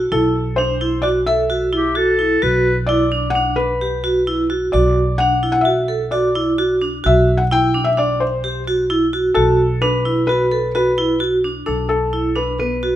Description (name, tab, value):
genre	contemporary instrumental, chamber music in an uneven meter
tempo	130 BPM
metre	5/4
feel	straight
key	B phrygian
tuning	A4 = 440 Hz
part	upright bass	bass	0.0-13.0 s	B1	-22 LUFS	right 1 dB	none
part	felt-muted upright piano	melody	0.1-13.0 s	A4 to G5	-19 LUFS	left 2 dB	none
part	vibraphone with hard mallets	arpeggios	0.1-12.9 s	B3 to A4	-18 LUFS	right 2 dB	none
part	warm clarinet	second line	1.7-2.8 s	G4 to B4	-18 LUFS	left 3 dB	none
room	light reverb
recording	close, detailed microphones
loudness	-15 LUFS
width	side -12 dB against mid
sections	0.0-11.7 A section; 11.7-13.0 B section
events	none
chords	0.0 Bm; 7.0 Cadd9/B (rootless); 9.4 B7(no3); 11.7 Bm7